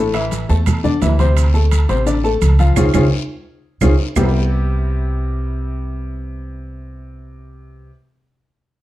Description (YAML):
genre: Afro-Cuban jazz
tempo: 172 BPM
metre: 4/4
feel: straight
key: C major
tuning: A4 = 439 Hz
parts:
  - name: clear upright piano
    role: accompaniment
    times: 0.0-7.9 s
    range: A2 to A5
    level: -20 LUFS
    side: left 3 dB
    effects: none
  - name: upright bass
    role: bass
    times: 0.0-7.9 s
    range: A1 to E2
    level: -17 LUFS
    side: equal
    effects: none
  - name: claves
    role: percussion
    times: 0.1-4.2 s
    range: none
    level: -30 LUFS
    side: right 8 dB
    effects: none
  - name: congas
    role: percussion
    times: 0.1-4.2 s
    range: none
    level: -21 LUFS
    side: right 2 dB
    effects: none
  - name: maracas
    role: percussion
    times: 0.1-4.2 s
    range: none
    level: -34 LUFS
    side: right 9 dB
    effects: none
  - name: timbales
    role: percussion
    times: 0.1-4.2 s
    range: none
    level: -26 LUFS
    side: right 4 dB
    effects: none
  - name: guiro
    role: percussion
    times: 0.3-4.2 s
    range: none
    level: -35 LUFS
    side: left 6 dB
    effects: none
room: light reverb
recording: dark, warm production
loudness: -14 LUFS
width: side -15 dB against mid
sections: 0.0-4.2 A section; 4.2-7.0 B section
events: band accent 2.8-4.2; drum fill 3.3-4.2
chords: 0.0 Asus4; 1.4 Dm7; 2.8 Db; 4.2 Cmaj7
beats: 0.32 0.67 1.02 | 1.37 1.72 2.07 2.42 | 2.77 3.12 3.46 3.81 | 4.16 4.51 4.86 5.21 | 5.56 5.91 6.26 6.61